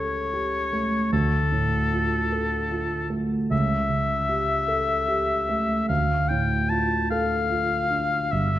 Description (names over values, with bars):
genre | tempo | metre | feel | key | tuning
classical, romantic duo for oboe and grand piano | 50 BPM (dotted quarters) | 6/8 | rubato | D minor | A4 = 439 Hz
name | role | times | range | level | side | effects
clear oboe | melody | 0.0-8.6 s | A4 to A5 | -24 LUFS | left 3 dB | none
dark concert grand piano | accompaniment | 0.0-8.6 s | G1 to A4 | -24 LUFS | right 1 dB | none
room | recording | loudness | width
wet recital hall reverb, RT60 1.6 s | none | -22 LUFS | side -13 dB against mid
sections
0.0-8.6 A section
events
none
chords
0.0 A7/C#; 1.1 Dm; 3.5 A7/C#; 5.9 Dm